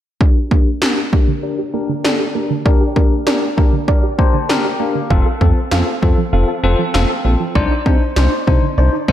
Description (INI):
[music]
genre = synth-pop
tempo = 98 BPM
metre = 4/4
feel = straight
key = G minor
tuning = A4 = 440 Hz
[part]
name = bell-like tine electric piano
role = accompaniment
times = 0.2-9.1 s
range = C4 to Bb5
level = -19 LUFS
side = left 4 dB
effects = wide subtle chorus, low-pass filter
[part]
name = soft round pluck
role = arpeggios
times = 0.2-9.1 s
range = D3 to F5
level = -23 LUFS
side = right 8 dB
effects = chorus, low-pass filter, analog delay, slapback echo
[part]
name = 80s electronic pad drums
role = drums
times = 0.2-9.1 s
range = kick drum, snare drum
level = -15 LUFS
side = equal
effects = overdrive
[part]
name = chorused synth bass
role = bass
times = 5.1-9.1 s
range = F1 to C3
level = -15 LUFS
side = equal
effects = none
[sound]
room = moderate lush hall reverb, RT60 1.9 s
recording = big arena sound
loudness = -13 LUFS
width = side -11 dB against mid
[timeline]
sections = 0.2-9.1 A section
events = filter sweep 0.2-9.1; tine electric piano fill 3.9-5.1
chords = 0.2 Gm; 5.1 F; 7.6 Cmadd9